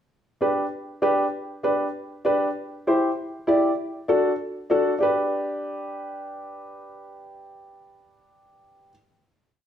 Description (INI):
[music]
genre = latin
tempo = 196 BPM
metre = 4/4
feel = straight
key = G major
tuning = A4 = 440 Hz
[part]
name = dark upright piano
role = solo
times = 0.4-8.9 s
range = D4 to D5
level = -22 LUFS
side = equal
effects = none
[sound]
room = wet large studio reverb, RT60 0.9 s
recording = heard from further back in the room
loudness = -22 LUFS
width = side -9 dB against mid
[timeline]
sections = 0.1-5.0 groove; 5.0-7.4 final chord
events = none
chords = 0.1 G; 2.6 Cadd9; 3.8 D; 5.0 G